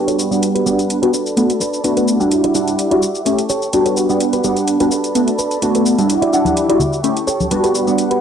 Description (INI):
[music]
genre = filtered disco house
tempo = 127 BPM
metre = 4/4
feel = swing 53% on 16ths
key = B minor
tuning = A4 = 440 Hz
[part]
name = funky polysynth comp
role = accompaniment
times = 0.0-8.2 s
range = G3 to F#5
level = -15 LUFS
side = equal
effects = chorus, phaser, cassette tape, low-pass filter
[part]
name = muted studio violin section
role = sustained chords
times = 0.0-8.2 s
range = G3 to D6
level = -25 LUFS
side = equal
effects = low-pass filter
[part]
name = direct-recorded clean electric guitar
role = riff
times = 0.1-8.2 s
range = D4 to D5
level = -21 LUFS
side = equal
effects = wide subtle chorus, low-pass filter
[part]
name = electronic hi-hat and cabasa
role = drums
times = 0.1-8.2 s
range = none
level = -25 LUFS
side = left 1 dB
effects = small room ambience
[part]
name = tambourine and congas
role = percussion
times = 6.1-8.1 s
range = none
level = -22 LUFS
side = left 2 dB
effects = low-pass filter on perc
[sound]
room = light reverb, studio reverb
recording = dry, gritty hardware recording, cassette tape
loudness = -13 LUFS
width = side -8 dB against mid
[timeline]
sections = 0.0-8.2 A section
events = filter sweep 0.0-8.2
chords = 0.2 Gmaj7; 1.1 Bm7; 2.3 Em9; 3.3 A7; 4.0 Gmaj7; 4.9 Bm7; 6.1 Em9; 7.0 A7